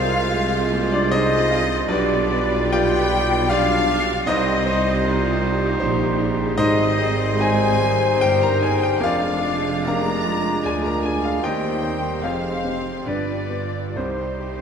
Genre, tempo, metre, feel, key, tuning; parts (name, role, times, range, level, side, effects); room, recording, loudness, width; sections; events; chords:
classical, romantic movement for piano and orchestra; 65-80 BPM; 3/4; rubato; C minor; A4 = 440 Hz
bright grand piano; melody; 0.0-14.6 s; B1 to Bb5; -24 LUFS; equal
warm symphonic violin section; melody; 0.0-14.6 s; C5 to Bb5; -33 LUFS; left 3 dB
clear oboe; second line; 0.0-14.6 s; B4 to D5; -31 LUFS; equal
clear studio violin section; second line; 0.0-14.6 s; C5 to Bb5; -31 LUFS; left 2 dB
mellow clarinet; second line; 0.0-14.6 s; C4 to F4; -31 LUFS; equal
small flute group; second line; 0.0-14.6 s; C5 to Bb5; -28 LUFS; left 3 dB
clear symphonic viola section; accompaniment; 0.0-14.6 s; Ab3 to B4; -30 LUFS; right 1 dB
warm bassoon; accompaniment; 0.0-14.6 s; G3 to Ab3; -29 LUFS; right 3 dB
mellow French horn section; sustained chords; 0.0-14.6 s; D4 to C5; -27 LUFS; left 6 dB
clear symphonic cello section; bass; 0.0-14.6 s; D2 to C3; -30 LUFS; right 3 dB
clear symphonic double bass section; bass; 0.0-14.6 s; F1 to Eb2; -28 LUFS; right 4 dB
mellow tuba; bass; 0.0-14.6 s; F1 to Eb2; -29 LUFS; right 4 dB
moderate concert hall reverb, RT60 2.3 s; -18 LUFS; side -7 dB against mid
0.0-14.6 A section
0.0 Fm/C; 1.9 G7/B; 4.3 Cm; 6.6 Abmaj7; 9.0 Ddim/F; 11.4 Cm/Eb; 12.2 Fm; 13.1 G; 14.0 Cm